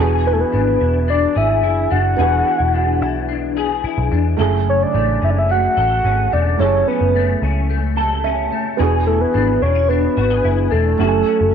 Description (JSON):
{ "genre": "indie pop", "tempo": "109 BPM", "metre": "4/4", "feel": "straight", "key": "unclear", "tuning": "A4 = 441 Hz", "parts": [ { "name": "dark upright piano", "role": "accompaniment", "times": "0.0-11.5 s", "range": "C#3 to A5", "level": "-24 LUFS", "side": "right 12 dB", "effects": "cassette tape" }, { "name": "electric guitar through a small old amp", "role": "accompaniment", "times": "0.0-11.5 s", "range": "F#2 to A4", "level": "-22 LUFS", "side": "left 13 dB", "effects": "ensemble chorus, vibrato effect" }, { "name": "vintage muted picked electric bass", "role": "bass", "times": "0.0-11.5 s", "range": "E1 to E2", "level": "-18 LUFS", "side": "equal", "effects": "none" }, { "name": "soft octave-layered synth lead", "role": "melody", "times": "0.3-11.5 s", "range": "A4 to F#5", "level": "-17 LUFS", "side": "right 1 dB", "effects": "wide subtle chorus, tape echo" } ], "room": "moderate spring reverb, RT60 1.7 s", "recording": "1960s-style stereo with parts hard left and right, nothing above 7.7 kHz", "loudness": "-14 LUFS", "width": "side -7 dB against mid", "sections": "0.0-11.5 A section", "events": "upright piano fill 7.7-8.8", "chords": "0.0 E9; 4.4 F#m7; 8.8 E9; 11.0 F#m7" }